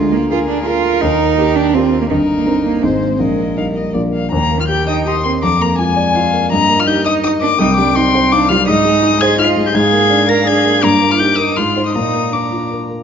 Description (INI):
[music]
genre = quick classical-period movement for piano quartet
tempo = 166 BPM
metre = 3/4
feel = rubato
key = Eb major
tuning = A4 = 441 Hz
[part]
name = rich violin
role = melody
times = 0.0-12.7 s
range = Bb4 to Bb6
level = -17 LUFS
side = left 6 dB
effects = none
[part]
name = warm cello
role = second line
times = 0.0-12.7 s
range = Eb3 to Bb4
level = -18 LUFS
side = right 8 dB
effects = none
[part]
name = warm violin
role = second line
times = 0.0-12.9 s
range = Eb4 to D6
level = -23 LUFS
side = left 3 dB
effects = none
[part]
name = dark concert grand piano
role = accompaniment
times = 0.0-13.0 s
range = G1 to Eb5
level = -16 LUFS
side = left 1 dB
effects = none
[sound]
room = moderate recital hall reverb, RT60 1.7 s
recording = nothing above 7.5 kHz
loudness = -12 LUFS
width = side -7 dB against mid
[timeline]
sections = 0.0-4.3 A section; 4.3-13.0 B section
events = none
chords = 0.0 Bb7/D; 1.0 Eb; 2.1 Eb/G; 2.8 Ab; 3.2 Eb/Bb; 4.0 Bb; 4.3 Eb; 5.4 Bb7/F; 6.5 Eb/G; 7.6 Cm; 8.7 Ab; 9.8 Bb7/Ab; 10.8 Eb/G; 11.6 Ab; 11.9 Bb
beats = 0.31 0.67 | 1.02 1.38 1.74 | 2.10 2.46 2.82 | 3.20 3.57 3.95 | 4.33 4.70 5.06 | 5.42 5.79 6.15 | 6.52 6.88 7.24 | 7.60 7.96 8.32 | 8.68 9.04 9.39 | 9.75 10.11 10.47 | 10.83 11.20 11.57 | 11.95 12.33 12.72